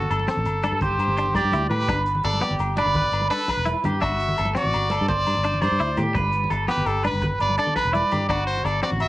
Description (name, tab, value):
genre	highlife guitar band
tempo	112 BPM (dotted quarters)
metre	12/8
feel	straight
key	G major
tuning	A4 = 440 Hz
part	brilliant trumpet	melody	0.0-9.1 s	G4 to E5	-26 LUFS	left 1 dB	cassette tape
part	electric guitar at the edge of break-up	accompaniment	0.0-9.1 s	B3 to E4	-31 LUFS	left 3 dB	tremolo, cassette tape
part	electric guitar at the edge of break-up	arpeggios	0.0-9.1 s	F#4 to D5	-25 LUFS	right 2 dB	lush chorus, cassette tape, analog delay
part	fingered electric bass	bass	0.0-9.1 s	E1 to A2	-26 LUFS	equal	none
part	congas	percussion	0.0-9.0 s	none	-32 LUFS	right 1 dB	none
part	warm soul drum kit	drums	0.1-9.1 s	hi-hat, kick drum, snare drum	-33 LUFS	equal	none
part	agogo bells	percussion	0.1-9.1 s	none	-33 LUFS	left 7 dB	none
room	studio ambience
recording	home recording on cassette, nothing above 10.8 kHz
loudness	-20 LUFS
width	side -16 dB against mid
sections	0.0-9.1 A section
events	none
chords	0.0 D5/G; 0.8 Csus2/G; 1.9 G; 4.0 Dadd9/G; 5.1 Csus2/G; 6.2 G; 8.3 D/G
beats	0.28 0.82 1.35 | 1.89 2.42 2.95 3.49 | 4.02 4.56 5.09 5.62 | 6.16 6.69 7.23 7.76 | 8.29 8.83